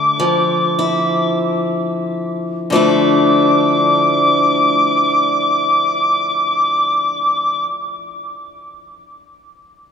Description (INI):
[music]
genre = celtic folk, Celtic slow air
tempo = free time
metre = none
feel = none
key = D minor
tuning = A4 = 436 Hz
[part]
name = wooden whistle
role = melody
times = 0.0-7.6 s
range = D6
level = -16 LUFS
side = left 1 dB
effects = none
[part]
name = picked acoustic archtop guitar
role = accompaniment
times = 0.0-7.7 s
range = D3 to E4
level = -17 LUFS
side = left 1 dB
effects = none
[sound]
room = wet cathedral reverb, RT60 5.2 s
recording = in a vast, echoing space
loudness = -13 LUFS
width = side -7 dB against mid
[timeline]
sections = 0.0-2.7 A section; 2.7-8.0 B section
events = slowing down 0.0-2.7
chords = 0.0 Dmadd9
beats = free time